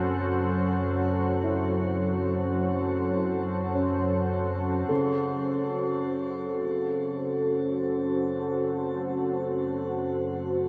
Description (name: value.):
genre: dark ambient drone.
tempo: free time.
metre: none.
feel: none.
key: unclear.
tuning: A4 = 440 Hz.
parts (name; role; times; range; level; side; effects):
deep dark ambient pad; sustained chords; 0.0-10.7 s; C#4 to B#4; -31 LUFS; equal; chorus, built-in reverb, shimmer reverb.
dark grand piano; arpeggios; 0.0-10.7 s; C#3 to E4; -36 LUFS; equal; diffuse ambient delay, shimmer reverb.
organ-like drone; drone; 0.0-10.7 s; F#2 to F#3; -34 LUFS; equal; ensemble chorus, built-in reverb.
bronze singing bowl; texture; 0.0-10.7 s; A4 to B5; -35 LUFS; equal; shimmer reverb.
room: wet huge ambient reverb, RT60 7.8 s.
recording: in a vast, echoing space.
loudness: -28 LUFS.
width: mono.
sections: 0.0-4.9 A section; 4.9-10.7 B section.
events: none.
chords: 0.0 F#m.